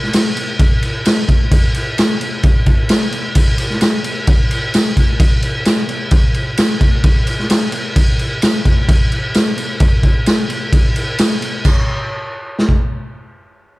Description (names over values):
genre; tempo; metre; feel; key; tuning
rock; 130 BPM; 4/4; straight; none; none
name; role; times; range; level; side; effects
raw garage drum kit; drums; 0.0-12.8 s; crash cymbal, kick drum, snare drum; -12 LUFS; equal; none
tambourine; percussion; 0.1-11.9 s; none; -30 LUFS; right 7 dB; none
room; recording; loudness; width
little or no reverb; dark, warm production; -12 LUFS; side -20 dB against mid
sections
0.0-11.7 A section; 11.7-13.8 B section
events
none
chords
none